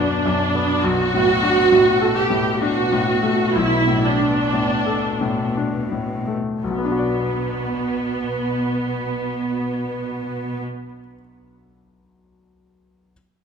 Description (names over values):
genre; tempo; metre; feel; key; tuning
cinematic, emotional film score for orchestra; 54-71 BPM; 3/4; rubato; B minor; A4 = 437 Hz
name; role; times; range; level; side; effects
bright grand piano; accompaniment; 0.0-13.1 s; B1 to D5; -23 LUFS; left 4 dB; none
rich symphonic viola section; accompaniment; 0.0-10.6 s; B3 to G4; -20 LUFS; right 3 dB; none
rich symphonic cello section; bass; 0.0-10.6 s; B2; -26 LUFS; left 1 dB; none
room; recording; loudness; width
moderate scoring stage reverb, RT60 2.0 s; none; -18 LUFS; side -6 dB against mid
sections
0.0-6.6 A section; 6.6-9.9 B section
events
slowing down 0.0-6.6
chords
0.0 Bm; 0.8 Asus4/B; 6.6 Bm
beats
| 0.83 1.72 2.62 | 3.54 4.51 5.53 | 6.62 7.70 8.78